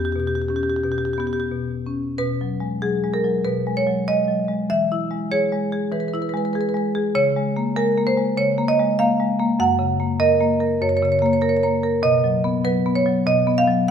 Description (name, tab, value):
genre	classical, contemporary piece for solo marimba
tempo	98 BPM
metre	4/4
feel	rubato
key	B major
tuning	A4 = 440 Hz
part	marimba with medium hard mallets	solo	0.0-13.9 s	E2 to F#5	-18 LUFS	equal	none
room	wet recital hall reverb, RT60 1.4 s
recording	minimal, uncompressed stereo recording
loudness	-18 LUFS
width	side -8 dB against mid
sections	0.0-2.2 A section; 2.2-13.9 B section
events	none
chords	0.0 Em6; 2.2 B6; 4.7 E; 7.2 C#6; 9.6 F#; 12.0 B